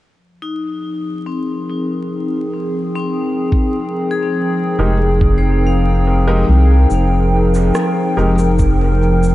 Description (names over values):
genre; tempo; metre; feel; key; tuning
ambient dub; 71 BPM; 4/4; straight; F minor; A4 = 442 Hz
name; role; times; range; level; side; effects
warbly tape-like pad; sustained chords; 0.8-9.3 s; F3 to G5; -18 LUFS; equal; chorus, built-in reverb
vibraphone with hard mallets; arpeggios; 0.4-9.3 s; C4 to F5; -23 LUFS; left 2 dB; low-pass filter, dub echo
electronic kick drum; drums; 3.5-8.8 s; none; -15 LUFS; equal; none
warm upright piano; stabs; 4.8-8.3 s; Ab3 to Bb4; -25 LUFS; equal; dub echo
round analog bass; bass; 4.8-9.3 s; F1 to C2; -13 LUFS; equal; none
electronic cabasa and rim click; drums; 6.9-9.3 s; none; -26 LUFS; equal; overdrive, dub echo
room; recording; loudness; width
moderate huge ambient reverb, RT60 6.1 s; dreamy mix soaked in reverb, vinyl crackle, nothing above 10.6 kHz; -13 LUFS; side -16 dB against mid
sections
0.1-6.9 A section; 6.9-9.3 B section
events
filter sweep on vibraphone 0.1-6.9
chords
0.1 Fm11